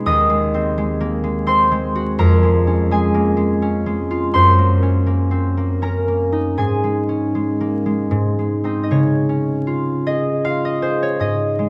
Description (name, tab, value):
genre	classical, solo harp piece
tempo	77-87 BPM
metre	3/4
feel	rubato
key	Db major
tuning	A4 = 439 Hz
part	concert harp	solo	0.0-11.7 s	Eb2 to Eb6	-18 LUFS	equal	none
room	light reverb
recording	close, detailed microphones, vinyl crackle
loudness	-18 LUFS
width	mono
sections	0.0-8.9 A section; 8.9-11.7 B section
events	none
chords	0.1 Ab/Eb; 2.2 Db/F; 4.3 Ebm7/Gb (rootless); 6.6 Absus4; 8.1 Ab; 8.9 Db